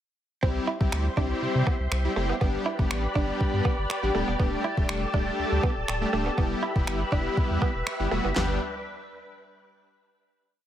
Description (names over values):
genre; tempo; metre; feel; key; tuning
dance-pop; 121 BPM; 4/4; straight; G major; A4 = 438 Hz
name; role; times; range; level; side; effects
big bright polysynth; accompaniment; 0.4-8.6 s; G3 to G4; -30 LUFS; left 1 dB; sidechain pumping
soft string machine; sustained chords; 0.4-8.6 s; G3 to C6; -32 LUFS; equal; ensemble chorus, sidechain pumping
direct-recorded clean electric guitar; riff; 0.4-8.5 s; A3 to E4; -32 LUFS; right 5 dB; lush chorus
saturated sub bass; bass; 0.4-8.6 s; D1 to C3; -29 LUFS; equal; sidechain pumping
smooth R&B drum kit; drums; 0.4-8.5 s; finger snaps, handclaps, kick drum, snare drum, toms; -27 LUFS; equal; none
room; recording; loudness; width
light reverb, digital ambience; none; -24 LUFS; side -11 dB against mid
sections
0.4-8.4 verse; 8.4-10.3 final chord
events
none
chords
0.4 C; 2.4 Dsus4; 6.4 Em; 8.4 G